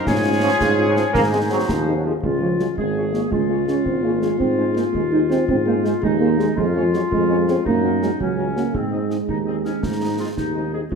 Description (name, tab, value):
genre	military-style march for wind band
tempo	111 BPM (dotted quarters)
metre	6/8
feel	straight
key	Db major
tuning	A4 = 441 Hz
part	clear trumpet section	melody	0.0-10.8 s	Ab4 to Eb5	-31 LUFS	equal	none
part	warm woodwind section	second line	0.0-11.0 s	C4 to Db5	-24 LUFS	left 5 dB	none
part	mellow wooden piccolo	second line	0.1-2.0 s	Ab5	-26 LUFS	left 5 dB	none
part	clear tuba	bass	0.1-11.0 s	Ab1 to Ab2	-24 LUFS	right 2 dB	none
part	concert snare drum and concert bass drum	drums	0.1-11.0 s	none	-29 LUFS	equal	none
part	dark French horn section	accompaniment	0.2-10.8 s	Ab3 to Ab4	-28 LUFS	left 6 dB	none
part	clear trombone section	sustained chords	0.4-2.1 s	Db3 to Db4	-24 LUFS	right 2 dB	none
part	dark euphonium	second line	2.2-11.0 s	F3 to Eb4	-22 LUFS	right 5 dB	none
room	wet large studio reverb, RT60 1.2 s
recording	minimal, uncompressed stereo recording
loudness	-17 LUFS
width	side -5 dB against mid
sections	0.0-2.2 A section; 2.2-11.0 B section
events	none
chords	0.1 Db/Ab; 1.1 Ab; 2.2 Db; 4.4 Ab; 6.6 Db/F; 7.7 Gb; 8.7 Ab